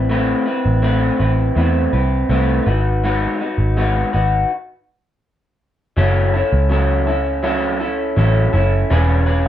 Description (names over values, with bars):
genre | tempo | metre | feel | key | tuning
indie pop, bedroom pop | 82 BPM | 4/4 | straight | unclear | A4 = 438 Hz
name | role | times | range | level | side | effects
electric guitar through a small old amp | accompaniment | 0.0-9.5 s | E3 to B4 | -18 LUFS | left 1 dB | lush chorus, warbly pitch drift
vintage muted picked electric bass | bass | 0.0-9.5 s | E1 to E2 | -16 LUFS | equal | none
room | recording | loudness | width
moderate studio reverb, RT60 0.6 s | dark, warm production | -15 LUFS | side -11 dB against mid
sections
0.0-6.0 A section; 6.0-9.5 B section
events
stop 4.5-6.0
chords
0.0 Amadd9; 2.7 G#m7; 6.0 F#m7; 8.9 E6